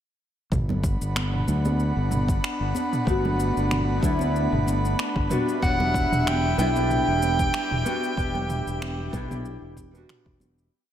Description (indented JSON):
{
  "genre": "sunset chillout",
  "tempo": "94 BPM",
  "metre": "4/4",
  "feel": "swing 54% on 16ths",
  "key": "G major",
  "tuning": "A4 = 440 Hz",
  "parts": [
    { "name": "airy breathy pad", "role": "sustained chords", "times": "0.8-10.7 s", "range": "B3 to B5", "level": "-30 LUFS", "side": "left 1 dB", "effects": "chorus, vintage 12-bit sampler grit" },
    { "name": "overdriven fingered electric bass", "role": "bass", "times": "0.5-10.7 s", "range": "E1 to D2", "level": "-26 LUFS", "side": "equal", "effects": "tube saturation" },
    { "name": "deep house drum kit", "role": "drums", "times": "0.5-10.7 s", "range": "finger snaps, shaker, toms", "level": "-31 LUFS", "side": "right 1 dB", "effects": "overdrive, studio reverb" },
    { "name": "electronic kick drum", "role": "drums", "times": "0.5-10.4 s", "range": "none", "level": "-27 LUFS", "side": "equal", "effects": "overdrive, studio reverb" },
    { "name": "congas", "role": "percussion", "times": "0.7-10.5 s", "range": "none", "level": "-32 LUFS", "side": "right 2 dB", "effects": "none" },
    { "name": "nylon-string guitar", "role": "accompaniment", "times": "3.0-10.7 s", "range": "F#3 to G4", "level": "-28 LUFS", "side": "moving between left 4 dB and right 4 dB", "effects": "auto-pan, vintage 12-bit sampler grit, ping-pong delay" },
    { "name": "breathy soprano saxophone", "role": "melody", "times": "5.6-10.1 s", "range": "F#5 to G5", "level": "-27 LUFS", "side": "right 1 dB", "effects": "ping-pong delay" },
    { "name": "twinkling granular texture", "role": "texture", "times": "6.8-10.8 s", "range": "G3 to G4", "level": "-42 LUFS", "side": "equal", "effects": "none" }
  ],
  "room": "moderate plate reverb, RT60 1.8 s, digital ambience",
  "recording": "dreamy mix soaked in reverb",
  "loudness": "-22 LUFS",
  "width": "side -10 dB against mid",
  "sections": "0.5-10.7 groove",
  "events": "fade-out 7.3-10.7",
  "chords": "0.5 Gmaj7; 5.3 Em7",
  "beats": "| 0.52 1.16 1.80 2.44 | 3.07 3.71 4.35 4.99 | 5.63 6.26 6.90 7.54 | 8.18 8.82 9.46 10.09"
}